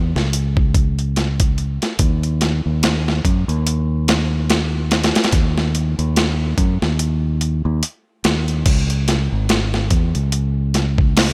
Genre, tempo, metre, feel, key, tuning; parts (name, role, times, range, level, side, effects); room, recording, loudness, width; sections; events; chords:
trip hop; 72 BPM; 4/4; swing 57% on 16ths; C# minor; A4 = 439 Hz
fingered electric bass; bass; 0.0-11.3 s; G#1 to F#2; -21 LUFS; equal
dusty soul sampler-style drum kit; drums; 0.2-11.3 s; crash cymbal, hi-hat, kick drum, snare drum; -20 LUFS; equal; overdrive
light reverb; -18 LUFS; mono
0.0-8.7 A section; 8.7-11.3 B section
break 7.0-8.7